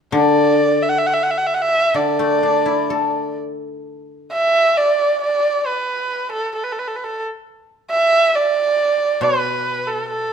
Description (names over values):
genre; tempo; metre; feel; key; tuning
chinese traditional, Chinese chamber ensemble; 62-70 BPM; 4/4; rubato; D gong mode; A4 = 441 Hz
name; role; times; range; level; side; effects
dark erhu; melody; 0.1-10.3 s; A4 to F#5+21c; -17 LUFS; right 2 dB; none
guzheng; accompaniment; 0.1-10.3 s; B2 to A4; -19 LUFS; left 4 dB; none
room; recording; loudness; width
moderate recital hall reverb, RT60 1.3 s; close, detailed microphones; -16 LUFS; side -7 dB against mid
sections
0.0-3.8 A section; 3.8-10.3 B section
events
none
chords
none